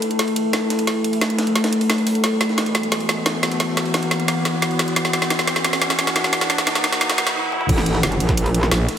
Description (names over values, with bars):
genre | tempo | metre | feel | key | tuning
dark technical drum and bass | 176 BPM | 4/4 | straight | unclear | A4 = 441 Hz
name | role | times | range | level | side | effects
metallic inharmonic drone | sustained chords | 0.0-9.0 s | E3 to A4 | -22 LUFS | left 1 dB | chorus, built-in reverb, sidechain pumping
drum and bass drum kit | drums | 0.0-9.0 s | crash cymbal, hi-hat, snare drum, toms | -20 LUFS | right 1 dB | high-pass filter on hats, high-pass filter on snare, high-pass filter on toms, high-pass filter on cymbals, high-pass filter on room
jungle sampler-style drum kit | drums | 0.0-9.0 s | hi-hat, ride cymbal, snare drum | -30 LUFS | right 1 dB | high-pass filter on snare, high-pass filter on cymbals, high-pass filter on hats, high-pass filter on room
riser and impact | sound effects | 0.0-9.0 s | none | -30 LUFS | equal | none
metallic wobble bass | bass | 7.7-8.7 s | G1 to Bb1 | -19 LUFS | equal | distortion, chorus
electronic kick drum | drums | 7.7-8.4 s | none | -20 LUFS | right 1 dB | overdrive
growling FM bass | bass | 8.7-8.9 s | Bb1 | -19 LUFS | right 1 dB | none
room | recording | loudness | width
wet lush hall reverb, RT60 1.7 s | heavily compressed radio sound, high-pass filter | -17 LUFS | side -9 dB against mid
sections
0.0-7.7 A section; 7.7-9.0 B section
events
build-up 0.0-7.7; drum fill 0.0-7.4, 7.5; riser 0.0-7.7; filter sweep on synth drone 0.0-7.7; filter sweep 0.0-7.7; break 7.4-7.7; drop 7.7-9.0; impact 7.7-9.0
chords
0.0 A5; 2.2 E5; 7.7 A7(no3)